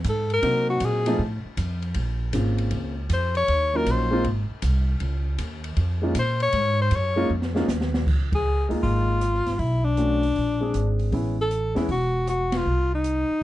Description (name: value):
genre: jazz, small-group swing and bop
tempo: 157 BPM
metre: 4/4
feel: swing 67% on 8ths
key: Db major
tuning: A4 = 440 Hz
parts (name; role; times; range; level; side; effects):
- upright bass; bass; 0.0-13.3 s; E1 to C3; -24 LUFS; equal; none
- open jazz drum kit; drums; 0.0-13.2 s; crash cymbal, hi-hat, kick drum, ride cymbal, rim click, snare drum; -32 LUFS; equal; none
- clear alto saxophone; melody; 0.1-13.4 s; D4 to Db5; -24 LUFS; left 2 dB; none
- warm grand piano; accompaniment; 0.4-11.9 s; F3 to Ab4; -26 LUFS; equal; none
room: light reverb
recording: dark, warm production, nothing above 10.6 kHz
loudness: -21 LUFS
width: side -15 dB against mid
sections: 0.0-8.1 A section; 8.1-13.4 B section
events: alto saxophone solo 0.0-8.1; drum fill 7.3-8.1; band accent 8.3, 12.5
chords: 0.4 Cm7b5; 1.2 F; 2.0 Bbm7; 3.5 Ebm7; 4.2 Ab; 5.0 Db6; 9.6 Cbm7; 10.4 Bb9; 11.1 Amaj7; 12.7 Cmadd11